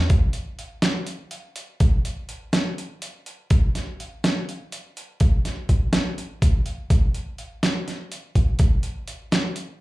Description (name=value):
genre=progressive instrumental, progressive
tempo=247 BPM (eighths)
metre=7/8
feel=straight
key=none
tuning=none
part: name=boom bap sampler-style drum kit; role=drums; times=0.1-9.7 s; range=hi-hat, kick drum, snare drum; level=-20 LUFS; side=equal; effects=overdrive
room=moderate club reverb, RT60 0.6 s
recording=live gig heard through the venue's PA, club reverb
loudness=-20 LUFS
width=side -19 dB against mid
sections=0.0-6.9 A section; 6.9-9.8 B section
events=break 6.7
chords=none